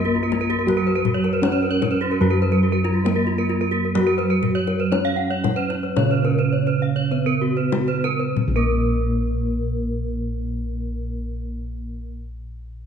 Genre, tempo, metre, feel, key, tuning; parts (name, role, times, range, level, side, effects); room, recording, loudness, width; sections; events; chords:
Balinese gamelan; 46-83 BPM; 4/4; straight; Bb pelog; A4 = 441 Hz
gamelan-type bronze metallophone; melody; 0.0-12.1 s; Gb3 to Db4; -25 LUFS; equal
gamelan-type bronze metallophone; arpeggios; 0.0-12.1 s; F4 to Gb5; -27 LUFS; left 5 dB
gamelan-type bossed gongs; bass; 0.0-12.1 s; Bb1 to Gb4; -25 LUFS; left 1 dB
gamelan-type bronze metallophone; arpeggios; 0.1-12.1 s; Gb4 to F5; -27 LUFS; right 4 dB
kendang; percussion; 0.3-9.0 s; -28 LUFS; left 6 dB
gamelan-type bronze metallophone; accompaniment; 0.7-12.1 s; Db3 to Bb3; -26 LUFS; right 8 dB
moderate concert hall reverb, RT60 1.8 s; nothing above 10.3 kHz; -19 LUFS; side -7 dB against mid
0.0-8.4 A section; 8.4-12.9 B section
slowing down 0.7-8.4